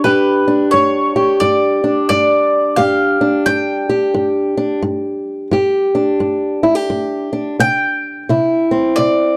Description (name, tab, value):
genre	acoustic country blues, solo or duo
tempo	88 BPM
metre	4/4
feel	swing 61% on 8ths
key	G mixolydian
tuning	A4 = 441 Hz
part	bowl-back mandolin	melody	0.0-9.4 s	B4 to G5	-18 LUFS	equal	none
part	fingerpicked old ladder-braced acoustic guitar	accompaniment	0.0-9.4 s	G2 to G4	-17 LUFS	equal	none
room	small room ambience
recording	dry, close 1970s-style studio recording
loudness	-15 LUFS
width	mono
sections	0.0-9.4 A section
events	none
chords	0.0 G5; 7.6 C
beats	0.06 0.74 1.43 | 2.11 2.80 3.48 4.17 | 4.85 5.54 6.22 6.91 | 7.59 8.28 8.96